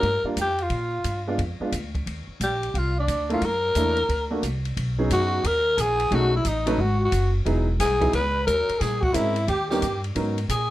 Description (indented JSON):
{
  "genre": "jazz, small-group swing and bop",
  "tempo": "178 BPM",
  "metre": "4/4",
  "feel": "swing 65% on 8ths",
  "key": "B major from 4.8 s",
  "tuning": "A4 = 440 Hz",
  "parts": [
    { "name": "growling alto saxophone", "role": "melody", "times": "0.0-10.7 s", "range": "D4 to B4", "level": "-24 LUFS", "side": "left 1 dB", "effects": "none" },
    { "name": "breathy trumpet", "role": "second line", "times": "0.0-10.7 s", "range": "D#4 to Bb5", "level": "-31 LUFS", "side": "right 2 dB", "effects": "none" },
    { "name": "clear baby grand piano", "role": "accompaniment", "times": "0.0-10.4 s", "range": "F#3 to B4", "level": "-27 LUFS", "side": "right 1 dB", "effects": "none" },
    { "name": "upright bass", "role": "bass", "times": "0.0-10.7 s", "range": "E1 to Bb2", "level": "-26 LUFS", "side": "equal", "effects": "none" },
    { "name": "open jazz drum kit", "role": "drums", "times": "0.0-10.6 s", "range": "hi-hat, kick drum, ride cymbal, snare drum", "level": "-33 LUFS", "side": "equal", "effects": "none" }
  ],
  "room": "light reverb",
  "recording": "none",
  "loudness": "-21 LUFS",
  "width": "side -15 dB against mid",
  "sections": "0.0-4.8 A section; 4.8-10.7 B section",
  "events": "none",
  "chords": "0.0 Gm7; 0.7 Bb7b9; 2.1 Ebmaj7; 3.4 Gb7alt; 4.8 B69; 6.1 B13; 7.5 Emaj9; 8.8 A#m7b5; 9.5 D#7b13; 10.2 G#m11"
}